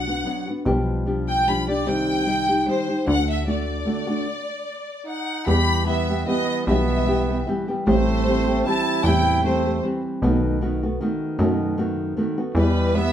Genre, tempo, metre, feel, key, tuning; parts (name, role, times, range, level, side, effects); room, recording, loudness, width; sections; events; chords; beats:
mexican folk, mariachi; 151 BPM; 3/4; swing 54% on 8ths; E harmonic minor from 5.5 s; A4 = 441 Hz
rich studio violin section; melody; 0.0-9.8, 12.6-13.1 s; B4 to B5; -25 LUFS; equal
nylon-string guitar; accompaniment; 0.0-13.1 s; E2 to G4; -23 LUFS; left 1 dB
plucky analog bass; bass; 0.0-13.1 s; A1 to F#2; -23 LUFS; equal
mellow trumpet; second line; 5.1-9.8, 12.5-13.1 s; G3 to G4; -27 LUFS; right 5 dB
moderate large studio reverb, RT60 1.1 s; band playing live in one room; -19 LUFS; side -10 dB against mid
0.0-5.5 A section; 5.5-13.1 B section
stop 4.3-5.5
0.0 Bm; 0.7 G7/B; 1.9 Cm; 3.1 D; 4.3 N.C.; 5.5 Em; 7.9 Am7; 10.2 B7; 12.6 Em
0.25 | 0.66 1.06 1.47 | 1.87 2.27 2.67 | 3.07 3.46 3.86 | 4.26 4.66 5.06 | 5.46 5.87 6.27 | 6.67 7.07 7.46 | 7.85 8.25 8.64 | 9.03 9.43 9.82 | 10.22 10.61 11.00 | 11.39 11.78 12.17 | 12.56 12.95